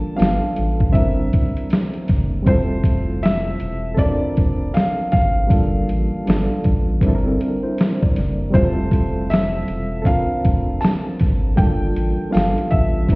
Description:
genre	lo-fi hip hop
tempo	79 BPM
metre	4/4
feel	swing 62% on 16ths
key	F major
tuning	A4 = 440 Hz
part	felt-muted upright piano	melody	0.0-13.2 s	C5 to A5	-25 LUFS	equal	low-pass filter
part	soft electric-piano-like synth keys	accompaniment	0.0-13.2 s	G3 to Bb4	-23 LUFS	right 1 dB	chorus, tremolo, cassette tape, low-pass filter
part	saturated sub bass	bass	0.0-13.2 s	E1 to A1	-22 LUFS	equal	none
part	boom bap sampler-style drum kit	drums	0.2-13.2 s	hi-hat, kick drum, snare drum	-18 LUFS	equal	none
part	tambourine	percussion	0.2-1.9, 9.3-12.6 s	none	-54 LUFS	left 4 dB	none
part	mellow tine electric piano	second line	7.0-8.5 s	C4 to D5	-26 LUFS	left 1 dB	fast stereo tremolo, low-pass filter, analog delay
room	light reverb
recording	heard muffled through a wall, stone room reverb, vinyl crackle, EQ, nothing above 10.3 kHz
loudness	-16 LUFS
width	side -25 dB against mid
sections	0.0-2.5 A section; 2.5-13.2 B section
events	none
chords	0.2 G9; 0.9 C9/G; 2.5 Fmaj9; 4.0 Bbmaj9/F; 5.5 Gm9; 6.3 G9; 7.0 C9/G; 8.5 Fmaj9; 10.1 Bbmaj9/F; 11.6 Gm9; 12.3 G9

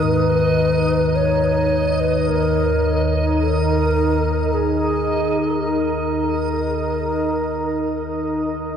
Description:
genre	dark ambient drone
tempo	53 BPM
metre	4/4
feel	straight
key	unclear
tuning	A4 = 440 Hz
part	mellow hollow long shakuhachi	melody	0.0-8.5 s	Ab4 to Db5	-21 LUFS	right 1 dB	tape echo
part	deep dark ambient pad	sustained chords	0.0-8.8 s	Eb4 to Bb5	-23 LUFS	right 1 dB	chorus, built-in reverb
part	gamelan-type bossed gongs	arpeggios	0.0-8.8 s	Eb2 to Db4	-26 LUFS	equal	tape echo
part	deep rumbling drone	drone	0.0-8.8 s	Eb2 to Eb3	-24 LUFS	left 5 dB	built-in reverb
part	backwards swelling texture	texture	0.0-8.8 s	Eb5	-30 LUFS	right 3 dB	built-in reverb, analog chorus
room	wet huge ambient reverb, RT60 7.3 s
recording	dreamy mix soaked in reverb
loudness	-17 LUFS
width	side -8 dB against mid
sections	0.0-8.8 A section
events	filter sweep on synth drone 0.0-8.8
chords	0.0 Eb5

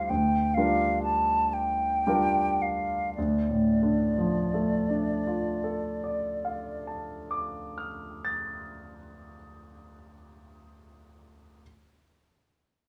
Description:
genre	classical, impressionist duo for flute and grand piano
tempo	34-45 BPM (dotted quarters)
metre	12/8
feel	rubato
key	D minor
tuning	A4 = 442 Hz
part	mellow silver concert flute	melody	0.0-6.8 s	D5 to A5	-30 LUFS	equal	none
part	clear concert grand piano	accompaniment	0.0-11.6 s	D2 to A6	-30 LUFS	equal	none
room	light reverb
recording	small room ambience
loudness	-27 LUFS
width	mono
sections	0.0-3.2 A section; 3.2-9.4 B section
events	slowing down 0.0-3.2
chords	0.1 Gm7/D; 3.2 Dm

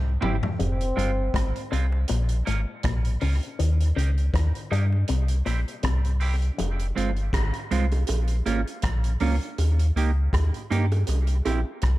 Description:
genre	dub reggae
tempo	80 BPM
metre	4/4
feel	swing 55% on 16ths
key	F minor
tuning	A4 = 439 Hz
part	warm sub bass	bass	0.0-12.0 s	F1 to G2	-23 LUFS	equal	none
part	clean electric guitar	accompaniment	0.2-11.6 s	Ab3 to G4	-32 LUFS	right 6 dB	high-pass filter, dub echo
part	vintage drum kit	drums	0.2-12.0 s	hi-hat, kick drum, rim click, toms	-30 LUFS	equal	none
part	dark trombone	melody	0.6-1.7 s	C4	-33 LUFS	equal	dub echo
part	electric guitar with an envelope filter	riff	0.6-6.8 s	F2 to G3	-32 LUFS	left 4 dB	spring reverb, dub echo
part	bongos	percussion	0.6-11.6 s	none	-36 LUFS	right 5 dB	high-pass filter on perc, dub echo
room	studio reverb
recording	dark, warm production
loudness	-22 LUFS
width	side -17 dB against mid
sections	0.0-12.0 A section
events	break 0.0-0.6; drum fill 0.0-0.6; filter sweep 0.0-6.6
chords	0.0 C; 0.6 Fm; 2.1 Bbm; 3.6 Eb; 5.1 C; 6.6 Fm; 8.1 Bbm; 9.6 Eb; 11.1 C

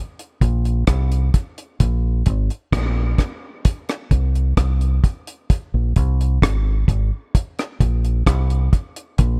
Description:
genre	dub reggae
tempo	65 BPM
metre	4/4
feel	straight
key	unclear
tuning	A4 = 439 Hz
part	deep reggae drum kit	drums	0.2-9.4 s	hi-hat, kick drum, rim click	-20 LUFS	equal	none
part	deep dub fingered electric bass	bass	0.4-9.4 s	Ab1 to C2	-20 LUFS	equal	none
room	little or no reverb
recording	none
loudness	-20 LUFS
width	mono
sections	0.0-9.4 A section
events	none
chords	none

